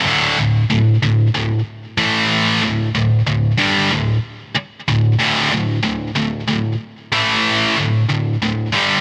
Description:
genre	metal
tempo	93 BPM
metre	4/4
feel	straight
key	unclear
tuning	A4 = 440 Hz
part	scooped high-gain guitar	solo	0.0-9.0 s	D2 to A3	-17 LUFS	equal	distortion, digital delay
room	little or no reverb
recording	none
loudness	-17 LUFS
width	mono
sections	0.1-9.0 A section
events	half time 0.1-9.0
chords	0.1 D5; 2.0 A5; 2.6 D5; 7.1 A5; 7.8 D5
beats	| 0.05 0.69 1.34 1.98 | 2.63 3.27 3.92 4.56 | 5.20 5.85 6.49 7.13 | 7.78 8.42

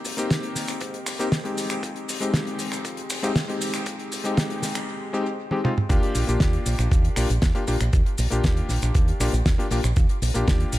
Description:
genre	nu-disco, nu disco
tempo	118 BPM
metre	4/4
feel	straight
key	Eb major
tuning	A4 = 440 Hz
part	clear electric grand piano	accompaniment	0.0-10.8 s	Ab3 to G4	-28 LUFS	left 2 dB	tape echo
part	damped 70s drum kit	drums	0.0-10.8 s	finger snaps, hi-hat, shaker, snare drum, toms	-27 LUFS	equal	tape echo
part	fingered electric bass with an envelope filter	bass	0.1-10.8 s	F1 to Ab2	-26 LUFS	equal	high-pass filter
part	electronic kick drum	drums	0.3-10.6 s	none	-22 LUFS	equal	high-pass filter on kick, high-pass filter on room
room	light reverb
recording	echo-heavy mix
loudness	-21 LUFS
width	side -16 dB against mid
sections	0.0-5.9 A section; 5.9-10.8 B section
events	build-up 0.0-5.9; drum fill 5.5-5.9; drop 5.9-10.8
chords	0.0 Abmaj9; 1.6 Fm9; 5.9 Ebmaj9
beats	0.31 0.81 1.32 | 1.83 2.34 2.85 3.36 | 3.87 4.37 4.88 5.39 | 5.90 6.41 6.92 7.42 | 7.93 8.44 8.95 9.46 | 9.97 10.48

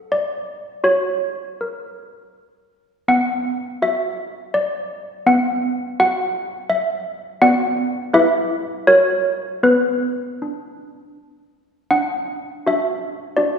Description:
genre	classical, tune for handbells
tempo	82 BPM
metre	3/4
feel	straight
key	B minor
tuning	A4 = 440 Hz
part	malleted handbells	solo	0.0-13.6 s	B3 to F#5	-17 LUFS	equal	none
room	wet concert hall reverb, RT60 1.9 s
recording	heard from further back in the room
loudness	-17 LUFS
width	side -6 dB against mid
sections	0.0-11.9 A section; 11.9-13.6 B section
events	none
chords	0.0 D5; 0.9 F#; 3.1 Bm; 8.1 Em; 8.9 F#; 9.6 Bm; 11.9 D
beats	0.11 | 0.86 1.61 2.35 | 3.10 3.82 4.55 | 5.27 5.99 6.71 | 7.42 8.14 8.88 | 9.63 10.39 11.15 | 11.91 12.65 13.39

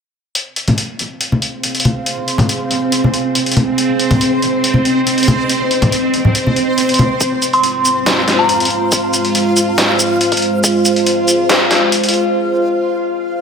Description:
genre	deep dubstep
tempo	140 BPM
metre	4/4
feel	half-time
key	F minor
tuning	A4 = 436 Hz
part	deep dark ambient pad	sustained chords	1.4-13.4 s	Ab3 to F5	-17 LUFS	right 1 dB	chorus, built-in reverb
part	backwards swelling texture	texture	1.7-12.3 s	C4 to F5	-18 LUFS	equal	built-in reverb
part	trip hop sampler-style drum kit	drums	0.4-12.2 s	hi-hat, shaker, snare drum	-16 LUFS	equal	high-pass filter on hats, high-pass filter on perc, high-pass filter on snare, high-pass filter on room
part	congas	percussion	0.7-7.1 s	none	-16 LUFS	left 1 dB	dub echo
part	soft dub sub bass	bass	7.2-12.2 s	Eb1 to F2	-37 LUFS	equal	none
part	electronic kick drum	drums	7.2-10.7 s	none	-21 LUFS	equal	overdrive, high-pass filter on kick
part	dark detuned synth bell	melody	7.5-8.7 s	Bb5 to C6	-17 LUFS	equal	chorus, phaser, dub echo
room	moderate lush hall reverb, RT60 2.0 s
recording	high-pass filter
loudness	-12 LUFS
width	side -6 dB against mid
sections	0.4-7.2 A section; 7.2-13.4 B section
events	build-up 7.2-13.4; break 12.4-13.4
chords	0.4 Fm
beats	| 0.35 0.78 1.21 1.64 | 2.07 2.50 2.92 3.35 | 3.78 4.21 4.64 5.07 | 5.50 5.92 6.35 6.78 | 7.21 7.64 8.07 8.49 | 8.92 9.35 9.78 10.21 | 10.64 11.07 11.49 11.92 | 12.35 12.78 13.21

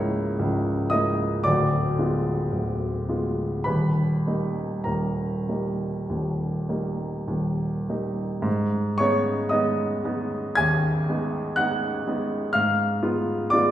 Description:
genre	classical, romantic nocturne for solo piano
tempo	48-63 BPM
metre	4/4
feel	rubato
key	G# minor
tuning	A4 = 440 Hz
part	warm grand piano	solo	0.0-13.7 s	C#1 to G#6	-22 LUFS	equal	none
room	wet recital hall reverb, RT60 1.6 s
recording	heard from further back in the room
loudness	-22 LUFS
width	side -12 dB against mid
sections	0.0-8.5 A section; 8.5-13.7 B section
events	none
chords	0.0 A#m7b5/C#; 1.4 Ddim7; 3.7 D#; 8.5 G#m; 12.5 G#dim7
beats	0.38 1.45 2.52 | 3.67 4.88 6.09 7.27 | 8.46 9.51 10.59 11.58 | 12.54 13.51

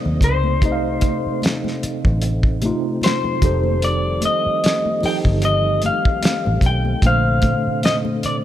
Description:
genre	R&B, neo-soul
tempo	75 BPM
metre	4/4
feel	swing 56% on 16ths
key	C dorian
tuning	A4 = 439 Hz
part	mellow tine electric piano	accompaniment	0.0-8.4 s	Bb2 to F5	-24 LUFS	right 2 dB	medium stereo tremolo
part	tonewheel organ	sustained chords	0.0-8.4 s	C3 to C4	-30 LUFS	left 1 dB	slow rotary speaker, overdrive, chorus vibrato
part	vintage muted fingered electric bass	bass	0.1-8.3 s	F1 to Eb2	-20 LUFS	equal	none
part	congas	percussion	0.1-8.2 s	none	-30 LUFS	left 6 dB	none
part	electric guitar through a small old amp	melody	0.2-8.4 s	C5 to G5	-21 LUFS	left 2 dB	vibrato effect
part	cloth-damped thuddy drum kit	drums	0.2-8.4 s	hi-hat, kick drum, snare drum	-19 LUFS	equal	none
room	light reverb, studio ambience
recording	none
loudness	-16 LUFS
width	side -12 dB against mid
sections	0.0-8.4 A section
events	none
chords	0.0 Cm69; 3.4 F9; 7.0 Bbmaj9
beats	| 0.62 1.42 2.22 3.02 | 3.82 4.62 5.42 6.22 | 7.02 7.82

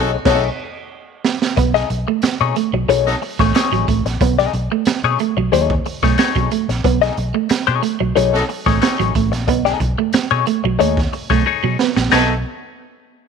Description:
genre	funk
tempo	91 BPM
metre	4/4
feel	straight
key	B mixolydian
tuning	A4 = 440 Hz
part	warm horn section	second line	0.0-3.2, 8.3-12.4 s	F#3 to A4	-23 LUFS	left 2 dB	none
part	direct-recorded clean electric guitar	accompaniment	0.0-12.3 s	A3 to D#5	-18 LUFS	left 14 dB	wah
part	vintage muted fingered electric bass	bass	0.0-12.4 s	A1 to B2	-21 LUFS	equal	none
part	raw garage drum kit	drums	0.3-12.3 s	china cymbal, crash cymbal, hi-hat, kick drum, snare drum	-20 LUFS	right 4 dB	none
part	clean electric guitar	riff	1.6-12.3 s	F#3 to B3	-21 LUFS	right 15 dB	none
room	light reverb, small room ambience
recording	1960s-style stereo with parts hard left and right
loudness	-15 LUFS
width	side -6 dB against mid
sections	0.0-1.6 A section; 1.6-12.1 B section; 12.1-13.3 C section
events	band accent 0.0-1.6; drum fill 0.3-1.6, 11.5-12.1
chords	0.0 B13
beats	0.26 0.92 | 1.57 2.23 2.89 3.55 | 4.21 4.87 5.53 6.19 | 6.84 7.50 8.16 8.82 | 9.48 10.14 10.80 11.46 | 12.12

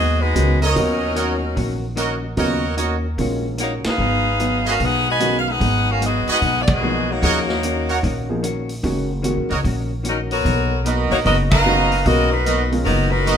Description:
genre	jazz, big band swing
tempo	149 BPM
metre	4/4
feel	swing 65% on 8ths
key	Eb minor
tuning	A4 = 440 Hz
part	edgy saxophone section	melody	0.0-13.4 s	Gb3 to Ab5	-20 LUFS	left 2 dB	none
part	vintage hollow-body jazz guitar	accompaniment	0.0-13.4 s	Ab2 to Gb4	-26 LUFS	left 1 dB	none
part	upright bass	bass	0.0-13.4 s	Gb1 to Eb2	-22 LUFS	equal	none
part	warm baby grand piano	accompaniment	0.3-13.2 s	Db3 to Bb4	-25 LUFS	right 1 dB	none
part	vintage drum kit	drums	0.4-13.4 s	hi-hat, kick drum, ride cymbal, snare drum	-26 LUFS	equal	none
part	brilliant trumpet section	stabs	0.6-13.4 s	Cb4 to Bb5	-23 LUFS	right 4 dB	none
room	moderate large studio reverb, RT60 1.4 s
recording	minimal, uncompressed stereo recording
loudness	-17 LUFS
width	side -8 dB against mid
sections	0.0-13.4 A section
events	band accent 3.8, 6.6, 11.5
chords	0.0 Abm7; 0.8 Ebm7; 4.0 Abm7; 7.2 Ebm7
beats	0.35 | 0.76 1.16 1.57 1.97 | 2.37 2.78 3.18 3.59 | 3.99 4.39 4.80 5.20 | 5.61 6.01 6.42 6.82 | 7.22 7.63 8.03 8.43 | 8.84 9.24 9.64 10.04 | 10.45 10.85 11.25 11.65 | 12.06 12.46 12.86 13.27

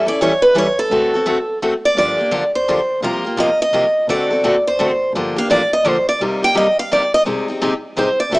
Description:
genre	acoustic string swing (jazz manouche)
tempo	170 BPM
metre	3/4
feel	swing 62% on 8ths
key	G minor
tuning	A4 = 440 Hz
part	picked steel-string acoustic guitar	melody	0.0-8.4 s	A4 to G5	-15 LUFS	equal	none
part	picked steel-string acoustic guitar	accompaniment	0.0-8.4 s	C3 to A4	-19 LUFS	left 1 dB	none
part	dark double bass	bass	0.9-8.4 s	G1 to D2	-30 LUFS	equal	none
room	light reverb, small room ambience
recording	rough home demo mix, small speaker sound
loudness	-14 LUFS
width	side -23 dB against mid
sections	0.0-6.2 A section; 6.2-8.4 A section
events	steel-string acoustic guitar solo 0.0-8.4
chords	0.0 A7; 0.9 D7; 2.0 Gm7; 3.0 C7sus4; 4.1 D7; 5.1 Gm7; 6.2 Cm7; 7.3 Abmaj7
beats	0.19 0.55 | 0.90 1.25 1.61 | 1.96 2.31 2.67 | 3.02 3.37 3.73 | 4.08 4.43 4.79 | 5.14 5.49 5.85 | 6.20 6.55 6.91 | 7.26 7.61 7.96 | 8.32

